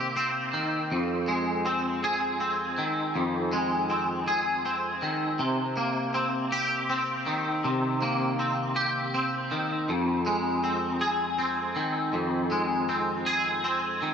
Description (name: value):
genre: rock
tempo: 53 BPM (dotted quarters)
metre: 6/8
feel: straight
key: unclear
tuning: A4 = 440 Hz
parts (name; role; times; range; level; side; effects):
- twangy electric guitar; solo; 0.0-14.1 s; F2 to Ab4; -25 LUFS; equal; ensemble chorus, digital delay
room: moderate huge ambient reverb, RT60 6.2 s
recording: none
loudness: -25 LUFS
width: side -7 dB against mid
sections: 0.0-14.1 A section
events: none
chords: 0.0 Cm7; 0.9 Fm7; 5.4 Cm7; 9.9 Fm7